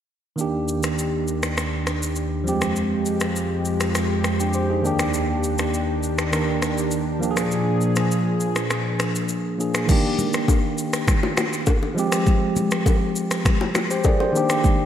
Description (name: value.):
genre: afrobeats.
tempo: 101 BPM.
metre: 4/4.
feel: straight.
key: Eb major.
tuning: A4 = 441 Hz.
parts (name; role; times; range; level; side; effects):
tine electric piano; accompaniment; 0.4-14.9 s; Eb3 to D5; -23 LUFS; right 1 dB; slow stereo tremolo.
warm analog pad; sustained chords; 0.4-9.9 s; Eb2 to Ab4; -24 LUFS; equal; chorus.
afro-pop drum kit; drums; 0.4-14.8 s; crash cymbal, finger snaps, kick drum, rim click, shaker; -24 LUFS; equal; none.
congas and bongos; percussion; 9.9-14.8 s; none; -27 LUFS; left 3 dB; none.
room: wet lush hall reverb, RT60 2.0 s.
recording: dreamy mix soaked in reverb.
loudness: -19 LUFS.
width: side -10 dB against mid.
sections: 0.4-9.9 A section; 9.9-14.9 B section.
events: none.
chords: 0.4 Ebmaj7; 2.5 Fmadd9; 4.8 Ebmaj7; 7.2 Bb7; 9.9 Ebmaj7; 12.0 Fmadd9; 14.3 Ebmaj7.